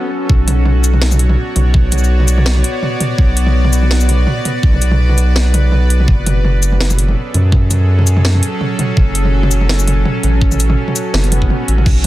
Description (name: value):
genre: half-time drum and bass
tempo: 166 BPM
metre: 4/4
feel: swing 55% on 16ths, half-time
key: B dorian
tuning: A4 = 441 Hz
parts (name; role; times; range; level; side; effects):
- bowed-like drone; sustained chords; 0.0-12.1 s; F#3 to D5; -20 LUFS; equal; built-in reverb, sidechain pumping
- swell; sound effects; 0.0-0.3, 11.3-11.9 s; none; -26 LUFS; equal; none
- saturated sub bass; bass; 0.3-12.1 s; F#1 to F#2; -12 LUFS; equal; tube saturation
- drum and bass drum kit; drums; 0.3-12.1 s; crash cymbal, hi-hat, shaker, snare drum, toms; -18 LUFS; equal; none
- electronic kick drum; drums; 0.3-11.9 s; none; -12 LUFS; equal; none
room: little or no reverb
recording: dense, heavily limited modern master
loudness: -11 LUFS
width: side -16 dB against mid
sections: 0.3-12.1 A section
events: break 0.0; swell 0.0, 11.3-11.9; drop 0.3-12.1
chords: 0.3 Bm; 6.1 F#m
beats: | 0.29 0.66 1.02 1.38 | 1.74 2.10 2.46 2.83 | 3.19 3.55 3.91 4.27 | 4.63 4.99 5.36 5.72 | 6.08 6.44 6.80 7.16 | 7.52 7.89 8.25 8.61 | 8.97 9.33 9.69 10.05 | 10.42 10.78 11.14 11.50 | 11.86